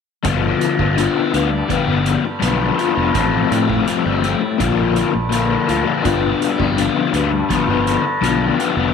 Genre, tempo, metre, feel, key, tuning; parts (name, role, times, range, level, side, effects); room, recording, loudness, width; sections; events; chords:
psychedelic rock; 83 BPM; 4/4; straight; G mixolydian; A4 = 438 Hz
raw garage guitar; riff; 0.2-8.9 s; G2 to F4; -17 LUFS; left 8 dB; overdrive, rotary speaker
fingered electric bass; bass; 0.2-8.9 s; F1 to A2; -22 LUFS; right 2 dB
soft-mallet drum kit; drums; 0.2-8.8 s; hi-hat, kick drum; -27 LUFS; right 6 dB
tanpura; drone; 0.3-8.9 s; G2 to G3; -23 LUFS; equal
moderate echo chamber reverb, RT60 2.4 s; 1960s-style stereo with parts hard left and right; -15 LUFS; side -6 dB against mid
0.2-8.9 A section
0.2 G7; 3.1 F/A; 4.6 Bb; 6.1 G7